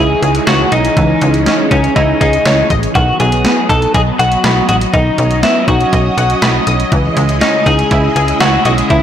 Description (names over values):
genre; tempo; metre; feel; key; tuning
synth-pop; 121 BPM; 4/4; straight; unclear; A4 = 440 Hz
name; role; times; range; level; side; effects
twelve-string electric guitar; melody; 0.0-9.0 s; C#4 to A4; -14 LUFS; left 1 dB; ping-pong delay
string machine, violins; sustained chords; 0.0-9.0 s; C#3 to D#5; -18 LUFS; right 1 dB; ensemble chorus
analog pluck; arpeggios; 0.0-9.0 s; D#3 to D#6; -19 LUFS; left 1 dB; chorus, ping-pong delay
slap-like FM bass; bass; 0.0-9.0 s; A1 to C#2; -15 LUFS; equal; none
clean 12-bit digital drum machine; drums; 0.2-9.0 s; hi-hat, kick drum, snare drum; -17 LUFS; equal; none
room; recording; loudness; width
moderate plate reverb, RT60 1.6 s, digital ambience; blown-out, overdriven recording, overdrive; -9 LUFS; side -9 dB against mid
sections
0.0-9.0 A section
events
none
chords
0.0 C#madd9; 3.0 B; 6.9 C#madd9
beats
0.47 | 0.97 1.47 1.96 2.46 | 2.95 3.45 3.94 4.44 | 4.94 5.43 5.93 6.42 | 6.92 7.42 7.91 8.41 | 8.90